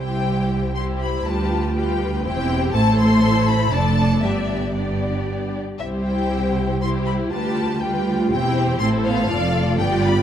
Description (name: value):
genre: quick classical-period movement for string orchestra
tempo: 120 BPM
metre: 3/4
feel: rubato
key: C major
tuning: A4 = 440 Hz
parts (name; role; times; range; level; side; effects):
- warm symphonic violin section; melody; 0.0-10.2 s; D5 to C6; -26 LUFS; left 4 dB; none
- warm symphonic violin section; second line; 0.0-10.2 s; G4 to D5; -26 LUFS; left 1 dB; none
- rich symphonic viola section; accompaniment; 0.0-10.2 s; G3 to F4; -23 LUFS; equal; none
- rich symphonic cello section; bass; 0.0-10.2 s; C2 to A2; -25 LUFS; right 1 dB; none
- warm symphonic double bass section; bass; 0.0-10.2 s; E1 to D2; -24 LUFS; right 2 dB; none
room: moderate scoring stage reverb, RT60 1.9 s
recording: dark, warm production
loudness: -18 LUFS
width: side -9 dB against mid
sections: 0.0-10.2 A section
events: none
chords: 0.0 C; 1.3 G7/D; 2.2 C/E; 2.7 Am; 3.7 Dm/F; 4.2 G; 5.8 C; 7.3 G7/D; 8.3 C/E; 8.8 Am; 9.3 Dm/F